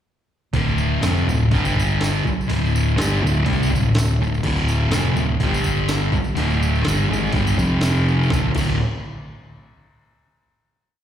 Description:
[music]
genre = garage rock duo or trio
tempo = 124 BPM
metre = 4/4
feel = straight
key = D minor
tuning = A4 = 443 Hz
[part]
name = thick fuzz guitar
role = riff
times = 0.5-8.8 s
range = D2 to C4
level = -19 LUFS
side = equal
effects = distortion
[part]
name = hollow-body short-scale fingered electric bass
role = bass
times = 0.5-8.8 s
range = D1 to C2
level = -24 LUFS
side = equal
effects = none
[part]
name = breakbeat sampler-style drum kit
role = drums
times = 0.5-8.7 s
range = crash cymbal, hi-hat, kick drum, snare drum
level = -25 LUFS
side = equal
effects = none
[part]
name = tambourine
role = percussion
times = 0.6-8.8 s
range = none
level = -36 LUFS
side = right 2 dB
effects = none
[sound]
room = little or no reverb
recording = live gig heard through the venue's PA, recital hall reverb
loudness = -17 LUFS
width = side -10 dB against mid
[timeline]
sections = 0.5-8.3 riff; 8.3-10.3 final chord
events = none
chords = 0.5 Dm; 1.5 G5; 2.2 Dm; 5.4 G5; 6.1 D5; 7.6 F5; 8.3 D5

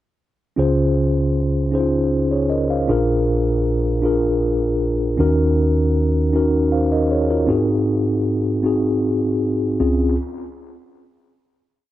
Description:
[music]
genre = gospel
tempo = 52 BPM (dotted quarters)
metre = 6/8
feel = straight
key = Db major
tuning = A4 = 440 Hz
[part]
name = mellow tine electric piano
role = solo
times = 0.6-10.2 s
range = Bb1 to F5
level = -16 LUFS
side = equal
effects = medium stereo tremolo
[sound]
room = moderate studio reverb, RT60 0.6 s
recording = dark, warm production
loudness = -16 LUFS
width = side -14 dB against mid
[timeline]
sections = 0.6-9.8 verse; 9.8-11.9 final chord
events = none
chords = 0.6 Dbmaj7; 2.9 Bb7; 5.2 Ebm7; 7.5 Ab7; 9.8 Dbmaj7

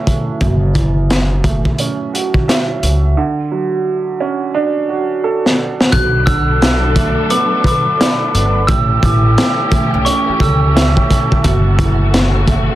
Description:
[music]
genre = hip hop, boom-bap hip-hop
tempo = 87 BPM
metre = 4/4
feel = swing 62% on 16ths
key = B minor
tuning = A4 = 445 Hz
[part]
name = dark upright piano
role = accompaniment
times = 0.0-12.8 s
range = F#2 to E5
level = -19 LUFS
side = right 5 dB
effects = high-pass filter, low-pass filter
[part]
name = crunchy breakbeat drum kit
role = drums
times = 0.1-12.7 s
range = hi-hat, kick drum, snare drum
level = -15 LUFS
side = equal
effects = none
[part]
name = upright bass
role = bass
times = 0.4-12.7 s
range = F#1 to C#2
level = -15 LUFS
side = equal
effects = none
[part]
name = glockenspiel with soft plastic mallets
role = melody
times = 5.9-10.9 s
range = C#6 to F#6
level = -18 LUFS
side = right 1 dB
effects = high-pass filter, low-pass filter, tape echo
[part]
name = mellow tonewheel organ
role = sustained chords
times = 5.9-12.8 s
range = A4 to E6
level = -28 LUFS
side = equal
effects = chorus vibrato, fast rotary speaker, high-pass filter, low-pass filter
[part]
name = warm symphonic string section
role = stabs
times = 5.9-12.8 s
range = C#3 to A4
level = -22 LUFS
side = left 4 dB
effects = high-pass filter, low-pass filter, tape echo
[sound]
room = light reverb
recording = dense, heavily limited modern master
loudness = -12 LUFS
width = side -14 dB against mid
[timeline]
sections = 0.0-5.9 A section; 5.9-12.8 B section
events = filter sweep on upright piano 0.0-5.9; drum fill 5.2-5.9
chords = 0.4 F#m7; 3.2 Dmaj7; 5.9 Bm7; 8.7 A7; 11.4 F#m7

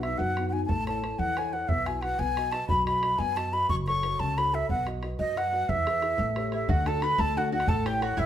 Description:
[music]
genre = celtic folk, Celtic jig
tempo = 120 BPM (dotted quarters)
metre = 6/8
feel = straight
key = unclear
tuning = A4 = 441 Hz
[part]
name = wooden flute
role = melody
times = 0.0-8.3 s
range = D#5 to C#6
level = -27 LUFS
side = equal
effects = none
[part]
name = dark upright piano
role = accompaniment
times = 0.0-8.3 s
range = C#3 to D#5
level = -33 LUFS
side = left 2 dB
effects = none
[part]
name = upright bass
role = bass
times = 0.0-8.3 s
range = F#1 to F#2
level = -33 LUFS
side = equal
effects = none
[part]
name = bodhran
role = percussion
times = 0.0-8.3 s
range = none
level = -33 LUFS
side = right 1 dB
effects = none
[part]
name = mandolin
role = second line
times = 6.5-8.3 s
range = E4 to B4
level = -34 LUFS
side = right 5 dB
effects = none
[sound]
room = wet studio reverb, RT60 0.7 s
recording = band playing live in one room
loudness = -25 LUFS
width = side -10 dB against mid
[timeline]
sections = 0.0-6.7 A section; 6.7-8.3 B section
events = none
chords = 0.0 B; 0.7 A; 1.7 Bsus4; 2.2 B; 3.7 F#m; 4.7 B; 5.7 E; 6.2 A7; 6.7 D; 7.7 A

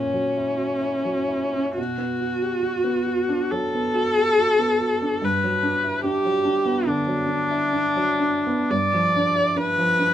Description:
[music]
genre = classical, romantic duo for viola and grand piano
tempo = 59-73 BPM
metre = 4/4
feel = rubato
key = B minor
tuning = A4 = 438 Hz
[part]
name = warm viola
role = melody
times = 0.0-10.1 s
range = C#4 to D5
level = -21 LUFS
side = left 1 dB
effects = none
[part]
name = warm baby grand piano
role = accompaniment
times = 0.0-10.1 s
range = G2 to G4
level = -25 LUFS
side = right 2 dB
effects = none
[sound]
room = light reverb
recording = minimal, uncompressed stereo recording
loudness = -20 LUFS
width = side -11 dB against mid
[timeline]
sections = 0.0-10.1 A section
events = none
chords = 0.0 F#7/A#; 1.8 Bm; 5.2 Gmaj7; 8.7 G7

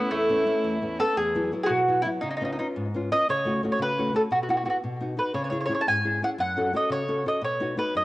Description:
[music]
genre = italian folk, Italian serenade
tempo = 115 BPM (dotted quarters)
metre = 6/8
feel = straight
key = E major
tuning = A4 = 439 Hz
[part]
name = mandolin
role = melody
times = 0.0-8.0 s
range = A3 to A5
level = -24 LUFS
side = equal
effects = plate reverb, analog delay
[part]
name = warm violin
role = second line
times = 0.0-1.2 s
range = B3 to E4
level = -32 LUFS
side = right 2 dB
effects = cassette tape, plate reverb
[part]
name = nylon-string guitar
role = accompaniment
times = 0.0-8.0 s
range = E2 to A4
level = -29 LUFS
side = left 1 dB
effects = cassette tape
[sound]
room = moderate studio reverb, RT60 0.6 s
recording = home recording on cassette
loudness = -23 LUFS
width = side -18 dB against mid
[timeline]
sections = 0.0-1.2 A section; 1.2-8.0 B section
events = none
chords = 0.0 Aadd9; 1.2 Esus2; 2.2 C#7; 3.3 F#m/C#; 4.3 Bsus4; 4.8 B; 5.3 C#m; 6.4 F#m; 7.4 B

